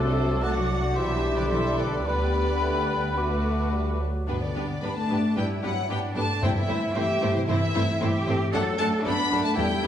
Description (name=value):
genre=quick classical-period movement for symphony orchestra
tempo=111 BPM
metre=4/4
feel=uneven beats, rubato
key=G major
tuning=A4 = 440 Hz
part: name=warm chamber violin section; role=melody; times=0.0-9.9 s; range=B4 to B5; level=-31 LUFS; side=left 2 dB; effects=none
part: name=bright silver concert flute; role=second line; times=0.0-4.0 s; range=B5 to D6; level=-33 LUFS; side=left 3 dB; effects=none
part: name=mellow clarinet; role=second line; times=0.0-3.7 s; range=C4 to A4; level=-35 LUFS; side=right 1 dB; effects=none
part: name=mellow oboe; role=second line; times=0.0-3.7 s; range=A4 to F#5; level=-34 LUFS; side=equal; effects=none
part: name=rich chamber violin section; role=second line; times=0.0-9.9 s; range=G3 to C5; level=-34 LUFS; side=left 2 dB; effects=none
part: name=mellow bassoon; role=accompaniment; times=0.0-4.3 s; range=F#3 to B3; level=-34 LUFS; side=equal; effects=none
part: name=rich chamber viola section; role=accompaniment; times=0.0-9.7 s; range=G3 to B4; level=-32 LUFS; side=right 1 dB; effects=none
part: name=mellow French horn section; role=sustained chords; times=0.0-9.9 s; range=B2 to G4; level=-30 LUFS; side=left 2 dB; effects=none
part: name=rich chamber cello section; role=bass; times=0.0-9.9 s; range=C3 to A4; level=-32 LUFS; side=right 2 dB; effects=none
part: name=rich chamber double bass section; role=bass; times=0.0-9.9 s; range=B1 to G2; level=-29 LUFS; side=right 1 dB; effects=none
part: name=timpani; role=percussion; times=6.4-7.2 s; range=G2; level=-31 LUFS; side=equal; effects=none
room=wet recital hall reverb, RT60 1.6 s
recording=heard from further back in the room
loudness=-23 LUFS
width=side -10 dB against mid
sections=0.0-4.3 A section; 4.3-9.9 B section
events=none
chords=0.0 D7/C; 1.0 G/B; 2.1 G/D; 3.2 D; 4.3 G; 6.4 Am7/G; 8.5 D/F#